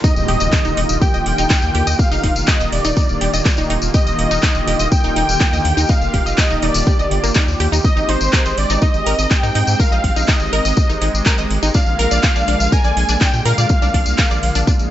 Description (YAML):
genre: progressive house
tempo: 123 BPM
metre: 4/4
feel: straight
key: Eb major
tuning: A4 = 440 Hz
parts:
  - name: wide unison lead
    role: melody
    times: 0.0-14.9 s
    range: C5 to Ab5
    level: -21 LUFS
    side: equal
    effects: sidechain pumping, tape echo
  - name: warm analog pad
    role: sustained chords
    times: 0.0-14.9 s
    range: D3 to G4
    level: -24 LUFS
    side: right 1 dB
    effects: chorus, sidechain pumping
  - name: wide unison pluck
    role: arpeggios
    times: 0.0-14.7 s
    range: Bb3 to Eb6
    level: -24 LUFS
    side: equal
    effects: sidechain pumping, tape echo
  - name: electronic kick drum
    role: drums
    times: 0.0-14.8 s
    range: none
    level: -16 LUFS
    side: equal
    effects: none
  - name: tambourine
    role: percussion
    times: 0.0-14.9 s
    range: none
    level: -25 LUFS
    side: left 4 dB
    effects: none
  - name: impact and swell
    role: sound effects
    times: 0.1-2.0, 14.8-14.9 s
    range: none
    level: -27 LUFS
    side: right 1 dB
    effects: none
  - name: round analog bass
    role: bass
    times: 0.2-14.9 s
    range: Eb1 to Bb2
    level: -20 LUFS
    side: equal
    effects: sidechain pumping
  - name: house drum kit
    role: drums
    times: 0.3-14.7 s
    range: handclaps, hi-hat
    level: -22 LUFS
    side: right 1 dB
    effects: high-pass filter on snare, sidechain pumping on hats, high-pass filter on hats
room: light reverb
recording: high-pass filter, nothing above 7.9 kHz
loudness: -13 LUFS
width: side -12 dB against mid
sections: 0.0-14.9 A section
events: drop 0.0-14.9; impact 0.0-2.0; swell 14.8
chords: 0.0 Ebmaj7; 7.8 Abmaj7; 11.7 Bb7